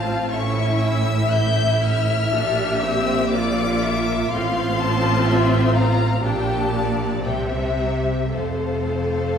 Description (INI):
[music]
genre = classical, slow romantic movement for string orchestra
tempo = 55-63 BPM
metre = 4/4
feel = rubato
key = F major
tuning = A4 = 438 Hz
[part]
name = warm chamber violin section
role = melody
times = 0.0-9.4 s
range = E5 to G6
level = -27 LUFS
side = left 5 dB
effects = none
[part]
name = rich chamber violin section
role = second line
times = 0.0-9.4 s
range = C5 to A5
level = -25 LUFS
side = left 3 dB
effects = none
[part]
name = rich chamber viola section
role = accompaniment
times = 0.0-9.4 s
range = Bb3 to A4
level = -24 LUFS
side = left 1 dB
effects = none
[part]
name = clear chamber double bass section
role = bass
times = 0.0-9.4 s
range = F1 to C2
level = -26 LUFS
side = right 2 dB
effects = none
[part]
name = clear studio cello section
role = bass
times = 0.0-9.4 s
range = F2 to C3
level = -24 LUFS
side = right 2 dB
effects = none
[sound]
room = wet concert hall reverb, RT60 1.9 s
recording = heard from further back in the room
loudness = -18 LUFS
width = side -7 dB against mid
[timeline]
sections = 0.0-9.4 A section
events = none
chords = 0.3 A; 2.3 Bb; 4.3 F/A; 6.2 Gm/Bb; 7.3 C; 8.3 F